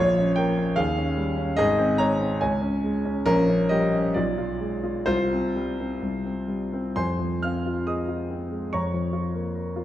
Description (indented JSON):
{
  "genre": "classical, romantic character piece for solo piano",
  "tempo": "63-78 BPM",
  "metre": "2/4",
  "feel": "rubato",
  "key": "F minor",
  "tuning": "A4 = 440 Hz",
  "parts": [
    { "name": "warm grand piano", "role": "solo", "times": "0.0-9.8 s", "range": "Ab1 to F6", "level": "-22 LUFS", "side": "equal", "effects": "none" }
  ],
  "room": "wet recital hall reverb, RT60 1.4 s",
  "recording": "dark, warm production",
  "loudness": "-22 LUFS",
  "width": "side -12 dB against mid",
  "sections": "0.0-7.0 A section; 7.0-9.8 B section",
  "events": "none",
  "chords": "0.0 Bbm; 0.8 Eb7; 1.6 Ab; 2.4 Db5; 3.3 Gdim/Bb; 4.2 Bdim7; 5.1 Csus4; 7.0 Fm; 8.7 Bbm/F"
}